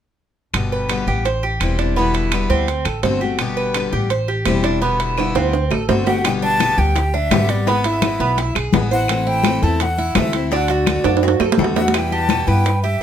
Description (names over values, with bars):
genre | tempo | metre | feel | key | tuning
latin, Cuban son and guajira | 168 BPM | 4/4 | straight | G major | A4 = 440 Hz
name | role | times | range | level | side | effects
picked steel-string acoustic guitar | accompaniment | 0.5-12.7 s | B2 to G4 | -22 LUFS | left 5 dB | none
upright bass | bass | 0.5-13.0 s | E1 to G2 | -21 LUFS | equal | none
claves | percussion | 0.5-12.5 s | none | -29 LUFS | left 1 dB | none
timbales | percussion | 0.5-12.8 s | none | -21 LUFS | right 6 dB | none
Cuban tres | arpeggios | 0.7-13.0 s | B3 to E5 | -22 LUFS | right 4 dB | none
breathy jazz flute | melody | 6.1-13.0 s | D5 to A5 | -22 LUFS | equal | none
bongos | percussion | 6.2-12.8 s | none | -26 LUFS | left 7 dB | none
congas | percussion | 6.3-13.0 s | none | -23 LUFS | left 5 dB | none
room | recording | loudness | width
light reverb | none | -15 LUFS | side -9 dB against mid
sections
0.5-6.2 A section; 6.2-13.0 B section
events
drum fill 5.2-6.2, 11.1-11.9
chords
0.5 G; 1.3 Am7; 2.0 Em7; 2.7 D7; 3.4 G; 4.1 Am7; 4.8 Em7; 5.5 D7; 6.2 G; 7.7 E/G#; 9.1 Am; 10.5 D; 11.9 Em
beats
| 0.54 0.90 1.25 1.61 | 1.97 2.33 2.68 3.04 | 3.40 3.75 4.11 4.47 | 4.82 5.18 5.54 5.89 | 6.25 6.60 6.96 7.31 | 7.67 8.03 8.38 8.74 | 9.09 9.45 9.80 10.16 | 10.52 10.88 11.23 11.59 | 11.95 12.30 12.66 13.02